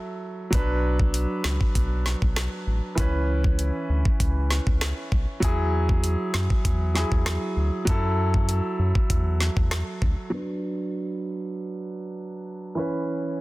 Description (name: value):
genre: dancehall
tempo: 98 BPM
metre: 4/4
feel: straight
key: unclear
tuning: A4 = 441 Hz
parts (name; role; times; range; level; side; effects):
- clear concert grand piano; accompaniment; 0.0-13.4 s; E3 to B4; -28 LUFS; right 1 dB; sidechain pumping, low-pass filter
- round analog bass; bass; 0.5-10.2 s; A1 to F#2; -24 LUFS; equal; none
- island pop drum kit; drums; 0.5-10.2 s; hi-hat, kick drum, rim click, snare drum; -24 LUFS; equal; none
room: digital ambience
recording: dense, heavily limited modern master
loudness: -22 LUFS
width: side -19 dB against mid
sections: 0.0-10.3 A section; 10.3-13.4 B section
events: break 0.0-0.5; filter sweep on grand piano 10.3-13.4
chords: 0.0 F#m7; 0.5 Bm; 3.0 C#m7; 5.4 Eadd9; 7.9 F#m7; 10.3 Bm; 12.8 C#m7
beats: | 0.53 1.14 1.75 2.36 | 2.98 3.59 4.20 4.81 | 5.42 6.04 6.65 7.26 | 7.87 8.49 9.10 9.71 | 10.32 10.94 11.55 12.16 | 12.77 13.38